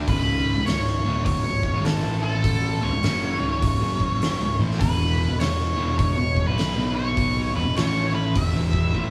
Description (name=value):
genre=stoner and doom metal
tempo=101 BPM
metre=4/4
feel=swing 64% on 8ths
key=C# minor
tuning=A4 = 440 Hz
part: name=fuzz guitar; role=riff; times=0.0-9.1 s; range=C#2 to B3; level=-28 LUFS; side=equal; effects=distortion
part: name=fuzz picked electric bass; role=bass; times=0.0-9.1 s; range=C#1 to B1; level=-28 LUFS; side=equal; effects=overdrive
part: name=octave-fuzz lead guitar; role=melody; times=0.1-9.1 s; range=A4 to E5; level=-29 LUFS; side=equal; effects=wah, distortion
part: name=oversized low-tuned drum kit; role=drums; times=0.1-9.1 s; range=hi-hat, kick drum, snare drum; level=-28 LUFS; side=equal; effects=none
room=moderate large studio reverb, RT60 1.3 s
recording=band playing live in one room, small room ambience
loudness=-23 LUFS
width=mono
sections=0.0-9.1 A section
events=drum fill 8.9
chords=0.1 C#5; 2.0 A5; 2.7 C#5; 3.8 F#5; 4.4 C#m; 4.8 E5; 6.7 B5; 7.5 E5